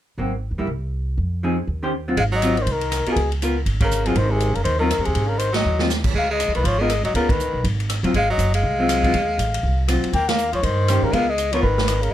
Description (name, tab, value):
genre	jazz, small-group swing and bop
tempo	241 BPM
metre	4/4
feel	swing 59% on 8ths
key	Ab mixolydian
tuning	A4 = 440 Hz
part	vintage hollow-body jazz guitar	accompaniment	0.2-11.6 s	Eb3 to C5	-23 LUFS	left 1 dB	none
part	upright bass	bass	0.2-12.1 s	Gb1 to Ab2	-23 LUFS	right 1 dB	none
part	trumpet with bucket mute	melody	2.2-12.1 s	Ab4 to G5	-23 LUFS	left 4 dB	none
part	edgy tenor saxophone	second line	2.2-12.1 s	Cb3 to Bb3	-26 LUFS	right 3 dB	none
part	swinging big-band drum kit	drums	2.2-12.1 s	crash cymbal, hi-hat, kick drum, ride cymbal, rim click, snare drum	-26 LUFS	right 1 dB	none
room	little or no reverb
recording	none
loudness	-18 LUFS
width	side -12 dB against mid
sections	0.2-2.2 A section; 2.2-12.1 B section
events	band accent 3.8, 5.5, 7.3, 10.3; drum fill 5.6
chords	0.2 Ab9; 0.7 N.C.; 1.2 Fm7; 1.7 Eb13; 2.2 Ab13; 3.2 Db6; 4.2 Ab13; 6.1 Db9; 8.1 Ab6; 10.1 Eb13; 11.1 Db13